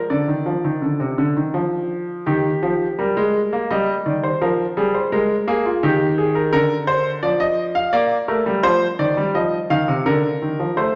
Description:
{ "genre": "classical, baroque-style two-part invention for grand piano", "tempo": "84 BPM", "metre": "3/4", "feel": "straight", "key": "Eb major", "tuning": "A4 = 441 Hz", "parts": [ { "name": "clear grand piano", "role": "solo", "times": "0.0-11.0 s", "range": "C3 to F5", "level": "-20 LUFS", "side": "equal", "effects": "none" } ], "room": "wet recital hall reverb, RT60 1.5 s", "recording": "none", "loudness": "-20 LUFS", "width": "mono", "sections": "0.0-2.3 A section; 2.3-10.8 B section", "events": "none", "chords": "0.1 Cmadd9 (rootless); 2.3 Eb; 3.7 Eb/G; 4.4 Bb5/F; 5.8 Eb; 6.5 Bb/D; 7.9 Bb; 8.6 F5; 10.1 Bb/D" }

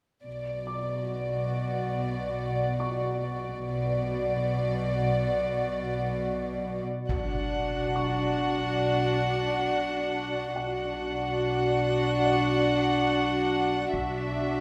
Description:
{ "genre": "cinematic, suspense film score", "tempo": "70 BPM", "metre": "4/4", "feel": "straight", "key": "B minor", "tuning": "A4 = 441 Hz", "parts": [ { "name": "warm chamber violin section", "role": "melody", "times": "0.2-14.6 s", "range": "D5 to F#5", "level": "-34 LUFS", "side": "equal", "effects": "none" }, { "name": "warbly tape-like pad", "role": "sustained chords", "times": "0.2-14.6 s", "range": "F#4 to F#5", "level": "-35 LUFS", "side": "equal", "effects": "chorus, built-in reverb" }, { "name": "dark chamber cello section", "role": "bass", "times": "0.2-6.8 s", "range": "B2", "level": "-36 LUFS", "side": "equal", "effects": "none" }, { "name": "dark chamber double bass section", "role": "bass", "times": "0.2-14.6 s", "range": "B1", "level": "-36 LUFS", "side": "equal", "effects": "none" }, { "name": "warm baby grand piano", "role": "texture", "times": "0.7-14.6 s", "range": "D5 to D6", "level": "-42 LUFS", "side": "equal", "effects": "none" }, { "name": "warm chamber violin section", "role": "second line", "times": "7.1-14.6 s", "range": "F#4", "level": "-36 LUFS", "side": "equal", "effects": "none" }, { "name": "warm chamber viola section", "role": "accompaniment", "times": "7.1-14.6 s", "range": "D4", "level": "-32 LUFS", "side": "equal", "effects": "none" }, { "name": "taiko ensemble", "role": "drums", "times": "7.1-8.8, 13.9-14.6 s", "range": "none", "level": "-40 LUFS", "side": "equal", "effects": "none" }, { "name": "impact", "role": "sound effects", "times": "7.1-10.5 s", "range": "none", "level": "-40 LUFS", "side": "equal", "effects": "none" } ], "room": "wet scoring stage reverb, RT60 1.8 s", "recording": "none", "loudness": "-28 LUFS", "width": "mono", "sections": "0.2-7.1 A section; 7.1-14.6 B section", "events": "impact 7.1-10.5", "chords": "0.2 Bm; 13.9 Dadd9/B" }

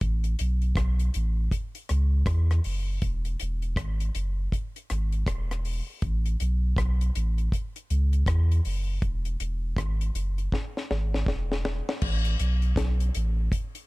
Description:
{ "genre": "roots reggae", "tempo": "80 BPM", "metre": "4/4", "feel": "swing 63% on 16ths", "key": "A major", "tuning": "A4 = 439 Hz", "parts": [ { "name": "warm sub bass", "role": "bass", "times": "0.0-13.5 s", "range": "E1 to E2", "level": "-25 LUFS", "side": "equal", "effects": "none" }, { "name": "deep reggae drum kit", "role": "drums", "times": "0.0-13.9 s", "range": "crash cymbal, hi-hat, kick drum, rim click, snare drum", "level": "-30 LUFS", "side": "equal", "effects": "none" } ], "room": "little or no reverb", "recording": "none", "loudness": "-24 LUFS", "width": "side -22 dB against mid", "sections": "0.0-12.0 A section; 12.0-13.9 B section", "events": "drum fill 10.5-12.0", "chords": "none" }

